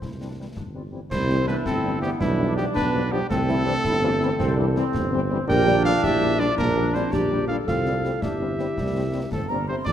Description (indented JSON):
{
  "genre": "military-style march for wind band",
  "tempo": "110 BPM (dotted quarters)",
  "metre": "6/8",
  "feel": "straight",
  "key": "C major",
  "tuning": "A4 = 440 Hz",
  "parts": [
    { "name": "mellow cornet", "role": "melody", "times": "0.0-9.9 s", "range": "E4 to G5", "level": "-27 LUFS", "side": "right 1 dB", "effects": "none" },
    { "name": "mellow woodwind section", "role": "second line", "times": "0.0-9.9 s", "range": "G3 to D5", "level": "-30 LUFS", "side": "left 3 dB", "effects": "none" },
    { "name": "mellow tuba", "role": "bass", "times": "0.0-9.9 s", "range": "G1 to F2", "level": "-26 LUFS", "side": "right 2 dB", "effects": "none" },
    { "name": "concert snare drum, concert bass drum and clash cymbals", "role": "drums", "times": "0.0-9.9 s", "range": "none", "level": "-32 LUFS", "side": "left 1 dB", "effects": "none" },
    { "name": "mellow French horn section", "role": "accompaniment", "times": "0.2-9.8 s", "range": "E3 to D4", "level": "-31 LUFS", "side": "left 6 dB", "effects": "none" },
    { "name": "dark euphonium", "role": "second line", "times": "1.1-9.9 s", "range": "E3 to G4", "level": "-29 LUFS", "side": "right 4 dB", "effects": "none" },
    { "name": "dark trombone section", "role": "sustained chords", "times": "1.1-9.9 s", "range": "G3 to F4", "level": "-29 LUFS", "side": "equal", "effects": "none" },
    { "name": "mellow hollow small flute group", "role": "second line", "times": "9.3-9.9 s", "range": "A5 to D6", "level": "-30 LUFS", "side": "right 2 dB", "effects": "none" }
  ],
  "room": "moderate concert hall reverb, RT60 2.0 s",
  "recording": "none",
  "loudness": "-20 LUFS",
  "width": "side -10 dB against mid",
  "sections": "0.0-1.1 A section; 1.1-9.9 B section",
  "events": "none",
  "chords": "0.0 C; 2.2 G7/B; 3.3 C; 5.5 Gm/Bb; 7.7 C"
}